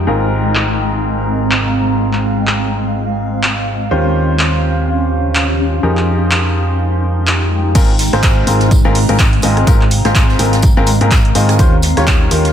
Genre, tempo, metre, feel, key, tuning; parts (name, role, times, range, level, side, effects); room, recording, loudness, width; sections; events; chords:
piano house; 125 BPM; 4/4; swing 58% on 16ths; Ab major; A4 = 440 Hz
clear upright piano; riff; 0.0-12.5 s; Ab2 to Eb5; -18 LUFS; left 2 dB; sidechain pumping, dub echo
fingered electric bass; bass; 0.0-12.5 s; Ab1 to Ab2; -16 LUFS; equal; sidechain pumping, low-pass filter
granular cloud pad; texture; 0.0-12.5 s; Ab3 to C6; -19 LUFS; right 1 dB; built-in reverb, sidechain pumping
punchy analog drum machine; drums; 0.6-12.5 s; crash cymbal, handclaps, hi-hat, rim click; -19 LUFS; equal
electronic kick drum; drums; 7.8-12.2 s; -12 LUFS; equal
jazz brush drum kit; drums; 7.8-12.5 s; hi-hat, snare drum, tambourine; -26 LUFS; right 2 dB; high-pass filter on hats, high-pass filter on snare, high-pass filter on perc, high-pass filter on room
light reverb, studio reverb; low-pass filter; -11 LUFS; side -9 dB against mid
0.0-7.8 A section; 7.8-12.5 B section
drop 7.8-12.5
0.1 Ab69; 3.9 Eb13; 5.8 Fm11; 7.8 Ab69; 11.6 Eb13